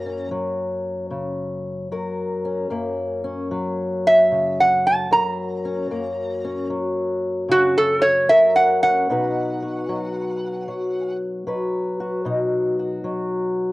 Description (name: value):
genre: acoustic country blues, solo or duo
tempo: 76 BPM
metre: 4/4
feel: swing 67% on 8ths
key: F# major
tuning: A4 = 439 Hz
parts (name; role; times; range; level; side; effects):
- metal-body resonator slide guitar; melody; 0.0-11.2 s; F#4 to A#5; -16 LUFS; right 1 dB; cassette tape
- fingerpicked old ladder-braced acoustic guitar; accompaniment; 0.0-13.7 s; F#2 to B4; -24 LUFS; left 2 dB; cassette tape
room: light reverb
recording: home recording on cassette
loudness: -19 LUFS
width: side -19 dB against mid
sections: 0.0-13.7 A section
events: resonator guitar played with a steel bar solo 0.0-13.7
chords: 0.0 F#; 9.1 B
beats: 0.33 1.12 1.92 | 2.72 3.52 4.32 5.11 | 5.91 6.71 7.50 8.29 | 9.09 9.88 10.67 11.46 | 12.25 13.04